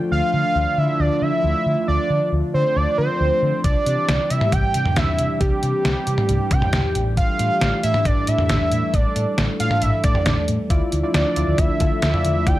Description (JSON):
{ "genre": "synth-pop", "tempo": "136 BPM", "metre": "4/4", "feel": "straight", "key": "D minor", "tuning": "A4 = 439 Hz", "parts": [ { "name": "warm analog pad", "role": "sustained chords", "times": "0.0-12.6 s", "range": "C3 to E5", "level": "-25 LUFS", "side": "equal", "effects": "chorus" }, { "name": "fat analog lead", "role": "melody", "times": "0.1-12.6 s", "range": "G4 to G5", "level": "-22 LUFS", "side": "right 1 dB", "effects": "slapback echo" }, { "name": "mellow fretless electric bass", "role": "bass", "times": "0.1-12.6 s", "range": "A1 to D3", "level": "-22 LUFS", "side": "equal", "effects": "wide subtle chorus" }, { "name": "detuned 8-bit digital drum machine", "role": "drums", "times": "3.6-12.6 s", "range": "hi-hat, kick drum, snare drum, toms", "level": "-21 LUFS", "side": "equal", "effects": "none" }, { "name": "warm analog keys", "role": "accompaniment", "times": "10.7-12.6 s", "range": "E4 to D5", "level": "-25 LUFS", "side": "left 2 dB", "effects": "chorus" } ], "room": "light reverb", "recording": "dark, warm production", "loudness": "-17 LUFS", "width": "side -15 dB against mid", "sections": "0.0-10.7 A section; 10.7-12.6 B section", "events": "none", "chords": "0.0 Dmadd9; 3.6 C; 7.0 A7sus4; 10.7 Dmadd9" }